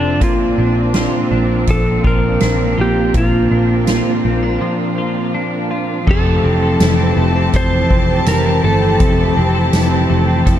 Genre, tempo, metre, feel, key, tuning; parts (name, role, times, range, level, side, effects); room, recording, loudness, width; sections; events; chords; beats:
dream pop; 82 BPM; 4/4; straight; F major; A4 = 437 Hz
clean lap steel guitar; melody; 0.0-9.3 s; D4 to C5; -20 LUFS; equal; tape echo
warm studio string section; sustained chords; 0.0-10.6 s; E3 to A5; -19 LUFS; right 3 dB
twelve-string electric guitar; arpeggios; 0.0-10.6 s; F2 to A4; -19 LUFS; left 2 dB; analog chorus, tape echo
vintage muted picked electric bass; bass; 0.0-10.6 s; F1 to Bb1; -18 LUFS; equal
soft-mallet drum kit; drums; 0.2-10.6 s; crash cymbal, hi-hat, kick drum, snare drum, tambourine; -19 LUFS; equal
light reverb, small room ambience; dark, warm production; -12 LUFS; side -11 dB against mid
0.0-6.1 A section; 6.1-10.6 B section
break 4.6-6.1
0.2 Bbadd9; 6.1 Fmaj7
| 0.22 0.95 1.68 2.41 | 3.14 3.88 4.61 5.34 | 6.07 6.80 7.53 8.27 | 9.00 9.73 10.46